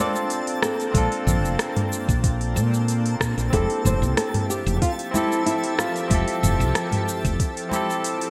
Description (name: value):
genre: sunset chillout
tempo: 93 BPM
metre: 4/4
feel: straight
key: F major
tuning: A4 = 439 Hz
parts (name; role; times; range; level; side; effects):
- flamenco guitar; melody; 0.0-7.0 s; E4 to D5; -30 LUFS; equal; subtle chorus, digital delay
- barky tine electric piano; accompaniment; 0.0-8.3 s; C4 to A5; -30 LUFS; equal; digital delay
- shimmering ambient pad; sustained chords; 0.0-8.3 s; F3 to E5; -35 LUFS; equal; chorus, built-in reverb
- twinkling granular texture; texture; 0.1-8.3 s; A5; -39 LUFS; equal; built-in reverb, lush chorus
- smooth R&B drum kit; drums; 0.2-8.3 s; hi-hat, rim click, shaker, toms; -29 LUFS; equal; gated reverb
- woody fretless electric bass; bass; 0.9-7.4 s; F1 to Bb2; -25 LUFS; equal; tube saturation
- electronic kick drum; drums; 0.9-7.5 s; none; -25 LUFS; equal; none
- congas; percussion; 0.9-7.9 s; none; -34 LUFS; equal; none
room: moderate lush hall reverb, RT60 1.7 s, digital ambience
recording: bright 1980s-style digital production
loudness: -23 LUFS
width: mono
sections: 0.0-8.3 A section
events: none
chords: 0.0 Bbmaj9; 3.5 Fmaj9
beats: 0.30 | 0.95 1.59 2.24 2.88 | 3.53 4.17 4.82 5.46 | 6.11 6.75 7.40 8.04